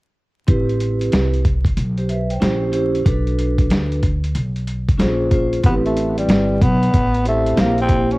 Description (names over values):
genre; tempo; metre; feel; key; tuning
hip hop, jazz-hop; 93 BPM; 4/4; swing 65% on 16ths; A dorian; A4 = 440 Hz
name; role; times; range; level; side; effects
vibraphone with medium hard mallets; accompaniment; 0.5-8.2 s; Bb3 to G5; -21 LUFS; right 1 dB; cassette tape
upright bass; bass; 0.5-8.2 s; G1 to D2; -20 LUFS; equal; tube saturation
dusty soul sampler-style drum kit; drums; 0.5-8.2 s; hi-hat, kick drum, snare drum; -18 LUFS; equal; overdrive, cassette tape
growling tenor saxophone; melody; 5.7-8.2 s; G3 to Db4; -19 LUFS; equal; cassette tape
room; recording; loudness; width
studio reverb; home recording on cassette, vinyl crackle; -15 LUFS; side -21 dB against mid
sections
0.5-5.6 A section; 5.6-8.2 B section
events
none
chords
0.5 Am9; 2.4 A#dim7; 3.1 Bm7; 5.0 Bbm9; 5.6 Am9; 7.6 C7/Bb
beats
| 0.48 1.12 1.77 2.41 | 3.06 3.70 4.35 4.99 | 5.64 6.28 6.93 7.57